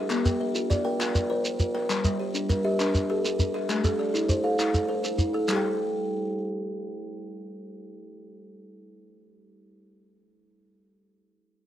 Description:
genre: southern african traditional, mbira-style interlocking cycle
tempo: 134 BPM (dotted quarters)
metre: 12/8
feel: straight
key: unclear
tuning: A4 = 440 Hz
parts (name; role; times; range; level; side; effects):
- buzzing kalimba; arpeggios; 0.0-10.3 s; G3 to G5; -30 LUFS; right 4 dB; none
- kalimba; arpeggios; 0.0-10.3 s; G3 to G5; -29 LUFS; left 4 dB; none
- group handclap; percussion; 0.1-5.6 s; none; -35 LUFS; left 4 dB; none
- shekere; percussion; 0.1-5.6 s; none; -26 LUFS; right 1 dB; none
room: light reverb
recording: dry, close 1970s-style studio recording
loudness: -24 LUFS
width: side -12 dB against mid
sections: 0.0-5.5 A section; 5.5-9.1 B section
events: none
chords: 0.1 Bb; 1.9 Gm; 3.7 Am; 5.5 N.C.

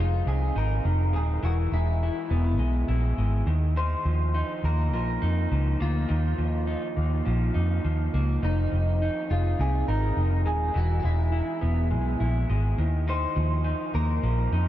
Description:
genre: indie pop, bedroom pop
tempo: 103 BPM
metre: 4/4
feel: swing 55% on 16ths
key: unclear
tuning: A4 = 440 Hz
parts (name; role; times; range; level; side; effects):
- electric guitar through a small old amp; melody; 0.0-14.7 s; Eb4 to C5; -33 LUFS; equal; lush chorus, ping-pong delay
- electric guitar through a small old amp; accompaniment; 0.0-14.7 s; F2 to E4; -31 LUFS; equal; wide subtle chorus, vibrato effect
- vintage muted fingered electric bass; bass; 0.0-14.7 s; Eb1 to F2; -24 LUFS; equal; none
room: light reverb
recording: cassette tape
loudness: -23 LUFS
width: side -13 dB against mid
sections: 0.0-14.7 A section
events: none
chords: 0.0 Fm7; 1.4 E; 3.5 Ebsus2; 8.4 Fm7; 10.8 E; 12.8 Ebsus2

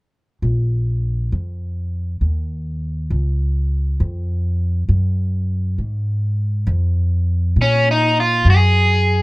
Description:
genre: blues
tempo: 67 BPM (dotted quarters)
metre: 12/8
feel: straight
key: Bb minor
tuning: A4 = 440 Hz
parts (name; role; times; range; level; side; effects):
- upright bass; bass; 0.4-9.2 s; Bb1 to Bb2; -17 LUFS; equal; none
- biting overdriven guitar; melody; 7.6-9.2 s; Db4 to Ab4; -15 LUFS; equal; none
room: studio ambience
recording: rough home demo mix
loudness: -16 LUFS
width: side -22 dB against mid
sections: 0.4-7.6 A section; 7.6-9.2 B section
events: none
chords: 0.4 Bbm7; 7.6 Bb5

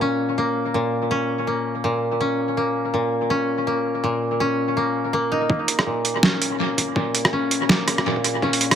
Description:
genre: half-time drum and bass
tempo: 164 BPM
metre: 4/4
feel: swing 57% on 16ths, half-time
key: Bb minor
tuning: A4 = 440 Hz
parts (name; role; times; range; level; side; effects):
- koto; arpeggios; 0.0-8.8 s; Bb2 to Eb4; -21 LUFS; left 1 dB; low-pass filter, analog delay
- dark detuned saw bass; bass; 5.5-8.8 s; Bb1 to C2; -40 LUFS; equal; none
- electronic kick drum; drums; 5.5-8.5 s; none; -26 LUFS; right 1 dB; overdrive, high-pass filter on kick, small room ambience
- boom bap sampler-style drum kit; drums; 5.7-8.8 s; hi-hat, rim click, snare drum; -20 LUFS; right 2 dB; overdrive, low-pass filter on hats, small room ambience, low-pass filter on snare, dub echo
room: wet spring reverb, RT60 1.5 s, digital ambience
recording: echo-heavy mix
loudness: -19 LUFS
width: side -8 dB against mid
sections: 0.0-5.5 A section; 5.5-8.8 B section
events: build-up 5.5-8.8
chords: 0.0 Bbm

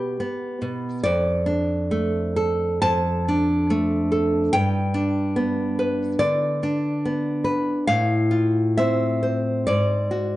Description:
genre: romantic piece for solo classical guitar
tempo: 60-73 BPM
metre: 4/4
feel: rubato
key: unclear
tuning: A4 = 440 Hz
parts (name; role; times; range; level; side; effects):
- nylon-string guitar; solo; 0.0-10.4 s; F2 to A5; -20 LUFS; equal; none
room: moderate recital hall reverb, RT60 1.4 s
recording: dark, warm production, nothing above 10.4 kHz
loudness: -20 LUFS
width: side -16 dB against mid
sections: 0.0-10.4 A section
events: none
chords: 0.0 Em (rootless); 1.0 Dm/F; 4.5 G; 7.9 F/A; 9.7 Ab7(no3)

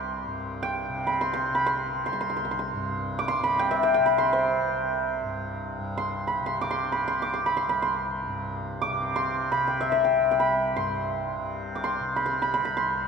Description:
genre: indian classical, Hindustani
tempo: free time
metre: none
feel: none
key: C raga hamsadhwani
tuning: A4 = 440 Hz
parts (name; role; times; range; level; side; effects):
- santur; melody; 0.0-13.1 s; C5 to D6; -25 LUFS; equal; none
- tanpura; drone; 0.0-13.1 s; C2 to C3; -31 LUFS; left 1 dB; none
room: wet cathedral reverb, RT60 4.3 s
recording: recorded in a church or concert hall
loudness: -24 LUFS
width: side -6 dB against mid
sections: 0.0-5.8 A section; 5.8-13.1 A section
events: none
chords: none

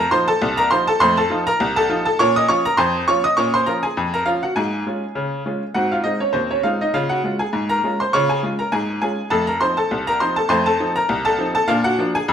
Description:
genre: ragtime piano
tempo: 101 BPM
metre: 2/4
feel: swing 56% on 16ths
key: Db major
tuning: A4 = 440 Hz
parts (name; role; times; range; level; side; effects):
- bright upright piano; solo; 0.0-12.3 s; C2 to Eb6; -16 LUFS; equal; none
room: wet large studio reverb, RT60 1.3 s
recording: band playing live in one room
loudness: -17 LUFS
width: side -8 dB against mid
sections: 0.0-12.3 A section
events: none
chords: 0.0 F7; 2.2 Bbm; 4.6 Db/Ab; 5.7 Ab; 6.9 Db; 9.3 F7; 11.7 Bb7

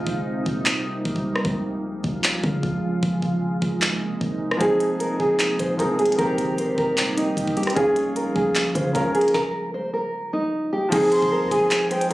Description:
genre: hip hop, trap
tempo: 152 BPM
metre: 4/4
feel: half-time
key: F minor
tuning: A4 = 440 Hz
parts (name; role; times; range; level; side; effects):
- glassy FM pad; sustained chords; 0.0-12.1 s; C3 to F4; -27 LUFS; right 1 dB; ensemble chorus, built-in reverb
- warm 808-style bass; bass; 0.0-12.1 s; Eb1 to Db3; -32 LUFS; equal; none
- trap drum kit; drums; 0.1-12.1 s; crash cymbal, handclaps, hi-hat, kick drum, rim click, snare drum; -26 LUFS; equal; none
- nylon-string guitar; melody; 4.6-12.1 s; Eb4 to C5; -21 LUFS; equal; low-pass filter
- clear concert grand piano; accompaniment; 4.6-12.1 s; Db3 to Bb4; -25 LUFS; equal; low-pass filter
- breathy jazz flute; second line; 11.1-12.1 s; G5 to C6; -26 LUFS; left 1 dB; ping-pong delay
room: light reverb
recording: recorded on a phone in the room, studio reverb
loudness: -20 LUFS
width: side -17 dB against mid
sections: 0.0-10.9 A section; 10.9-12.1 B section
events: break 0.0-4.6; stop 9.3-10.9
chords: 0.0 Eb6; 1.4 Db; 3.0 Abadd9; 4.6 Fm7; 6.2 Eb6; 7.8 Db; 9.3 N.C.; 10.9 Fm7

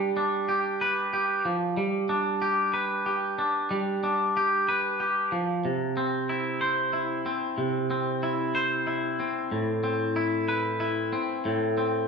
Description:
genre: rock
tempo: 93 BPM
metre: 3/4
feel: straight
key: G major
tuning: A4 = 440 Hz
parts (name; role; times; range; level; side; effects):
- twangy electric guitar; solo; 0.0-12.1 s; A2 to C5; -24 LUFS; equal; spring reverb, slapback echo
room: wet large studio reverb, RT60 1.2 s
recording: band playing live in one room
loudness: -24 LUFS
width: side -5 dB against mid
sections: 0.0-12.1 A section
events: none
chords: 0.0 G; 1.5 N.C.; 1.8 G; 5.3 N.C.; 5.6 C; 9.5 Amadd9

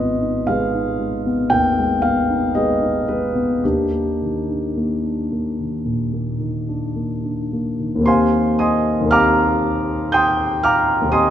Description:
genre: classical, impressionist solo piano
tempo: 52-62 BPM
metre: 4/4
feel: rubato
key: Eb major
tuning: A4 = 440 Hz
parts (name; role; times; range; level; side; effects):
- warm concert grand piano; solo; 0.0-11.3 s; Ab1 to G6; -17 LUFS; equal; none
room: moderate concert hall reverb, RT60 1.8 s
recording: dark, warm production, faint mains hum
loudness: -17 LUFS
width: side -10 dB against mid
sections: 0.0-8.1 A section; 8.1-11.3 A section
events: none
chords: 0.0 Abm6; 3.6 Ebmaj7; 8.1 Eb69

